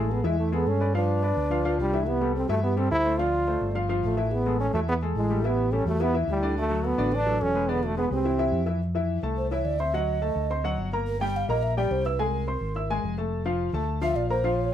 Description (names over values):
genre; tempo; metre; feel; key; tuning
jazz; 214 BPM; 4/4; straight; F major from 8.8 s; A4 = 440 Hz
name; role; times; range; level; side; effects
breathy trombone; melody; 0.0-8.6 s; G3 to F4; -27 LUFS; right 1 dB; none
breathy mellow round clay ocarina; second line; 0.0-14.7 s; D4 to G5; -31 LUFS; right 4 dB; none
warm upright piano; accompaniment; 0.0-14.7 s; D3 to E6; -29 LUFS; left 3 dB; none
fingered electric bass; bass; 0.0-14.7 s; E1 to G2; -28 LUFS; equal; none
room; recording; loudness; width
light reverb; none; -23 LUFS; side -10 dB against mid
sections
0.0-8.8 A section; 8.8-14.7 B section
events
ocarina solo 8.8-14.7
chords
0.0 Amaj9; 0.9 G7; 2.1 C6; 3.2 Dm7; 3.8 Gsus2; 4.3 Asus2; 6.6 D69; 7.7 E7; 8.2 C; 8.8 Fmaj7; 9.9 D7b9; 11.1 Gm; 12.2 Caug7; 13.3 F6; 13.9 Dm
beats
0.10 0.39 0.67 | 0.95 1.23 1.51 1.79 | 2.07 2.35 2.63 2.91 | 3.19 3.47 3.75 4.03 | 4.31 4.59 4.87 5.15 | 5.43 5.71 6.00 6.28 | 6.56 6.84 7.12 7.40 | 7.68 7.96 8.24 8.53 | 8.81 9.09 9.37 9.65 | 9.93 10.21 10.50 10.78 | 11.06 11.34 11.62 11.90 | 12.19 12.47 12.75 13.03 | 13.31 13.59 13.88 14.16 | 14.44 14.72